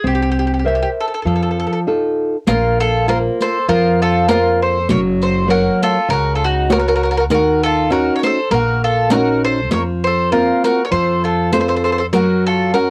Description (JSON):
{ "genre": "italian folk, Italian serenade", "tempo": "99 BPM", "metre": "4/4", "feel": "swing 54% on 8ths", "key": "Bb harmonic minor", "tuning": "A4 = 440 Hz", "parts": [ { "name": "bowl-back mandolin", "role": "melody", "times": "0.0-12.9 s", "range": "Gb4 to Db5", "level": "-20 LUFS", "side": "equal", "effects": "cassette tape" }, { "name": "nylon-string guitar", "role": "accompaniment", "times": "0.0-12.9 s", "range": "Db3 to E5", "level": "-20 LUFS", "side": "equal", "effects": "cassette tape" }, { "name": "upright bass", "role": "bass", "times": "0.0-12.9 s", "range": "Gb1 to Gb2", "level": "-24 LUFS", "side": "equal", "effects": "none" }, { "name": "mandolin", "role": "second line", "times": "2.5-12.9 s", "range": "Eb4 to Bb4", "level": "-24 LUFS", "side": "equal", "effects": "cassette tape" }, { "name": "riq", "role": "percussion", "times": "2.5-12.9 s", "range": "none", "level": "-24 LUFS", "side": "equal", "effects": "none" } ], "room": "light reverb", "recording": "home recording on cassette", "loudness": "-16 LUFS", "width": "mono", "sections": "0.0-2.5 A section; 2.5-12.9 B section", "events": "none", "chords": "0.0 C7; 1.3 F7; 2.5 Bbsus2; 4.9 Gb; 7.3 Ebm7; 9.7 Fsus4; 10.9 F; 12.1 Gb", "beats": "| 0.05 0.65 1.25 1.87 | 2.48 3.08 3.69 4.29 | 4.89 5.50 6.10 6.70 | 7.30 7.90 8.50 9.10 | 9.71 10.31 10.91 11.52 | 12.13 12.74" }